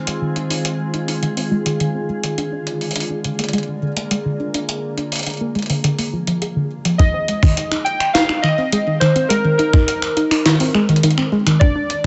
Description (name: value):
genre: IDM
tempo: 104 BPM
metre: 4/4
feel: straight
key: unclear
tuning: A4 = 440 Hz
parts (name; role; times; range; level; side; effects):
- glassy FM pad; sustained chords; 0.0-7.0 s; D3 to Ab4; -28 LUFS; equal; ensemble chorus, built-in reverb
- warbly dusty pluck; arpeggios; 0.0-11.8 s; D3 to Ab4; -22 LUFS; equal; chorus, dub echo
- jungle sampler-style drum kit; drums; 0.1-12.0 s; finger snaps, hi-hat, snare drum; -24 LUFS; equal; none
- warbly lo-fi synth keys; melody; 7.0-12.1 s; Bb4 to G5; -22 LUFS; equal; chorus
- electronic kick drum; drums; 7.0-11.7 s; none; -15 LUFS; equal; none
room: light reverb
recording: nothing above 8.0 kHz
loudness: -18 LUFS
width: mono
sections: 0.0-7.0 A section; 7.0-12.1 B section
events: filter sweep on ambient pad 0.0-7.0; filter sweep on synth pluck 0.0-7.0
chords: 0.0 Fm7; 2.4 Bb7; 7.0 Eb5